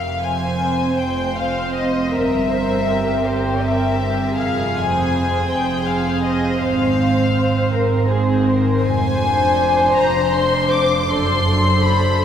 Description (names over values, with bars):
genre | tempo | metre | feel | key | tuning
classical, slow romantic movement for string orchestra | 53 BPM (dotted quarters) | 6/8 | rubato | F minor | A4 = 440 Hz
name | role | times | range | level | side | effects
warm symphonic violin section | melody | 0.0-12.2 s | C5 to D6 | -21 LUFS | left 3 dB | none
rich symphonic cello section | bass | 0.0-12.2 s | F2 to Ab2 | -24 LUFS | right 2 dB | none
warm chamber double bass section | bass | 0.0-12.2 s | F1 to Ab1 | -24 LUFS | right 2 dB | none
dark symphonic viola section | accompaniment | 0.2-12.2 s | C4 to C5 | -21 LUFS | right 2 dB | none
warm symphonic violin section | second line | 1.0-12.2 s | G4 to C5 | -23 LUFS | left 3 dB | none
room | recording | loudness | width
wet church reverb, RT60 3.0 s | heard from further back in the room | -16 LUFS | side -9 dB against mid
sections
0.0-12.2 A section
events
none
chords
0.0 Fm; 2.1 C7/G; 4.4 Fm; 6.6 Fm/Ab; 8.8 Dm7b5/F; 11.1 D7/F#